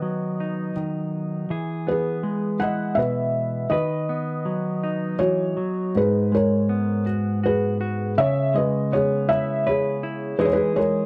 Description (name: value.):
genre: acoustic folk-pop ballad.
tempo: 81 BPM.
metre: 3/4.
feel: straight.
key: G# minor.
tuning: A4 = 439 Hz.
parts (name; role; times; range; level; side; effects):
felt-muted upright piano; melody; 0.0-11.1 s; F#4 to F#5; -25 LUFS; equal; none.
semi-hollow electric guitar; accompaniment; 0.0-11.1 s; G#2 to B4; -27 LUFS; equal; none.
room: moderate studio reverb, RT60 0.8 s.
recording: dark, warm production.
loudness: -23 LUFS.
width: mono.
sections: 0.0-6.0 A section; 6.0-11.1 B section.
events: none.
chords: 0.0 B7/D#; 1.5 E; 3.7 B/D#; 6.0 G#m7; 8.2 C#m7; 10.4 Emaj7.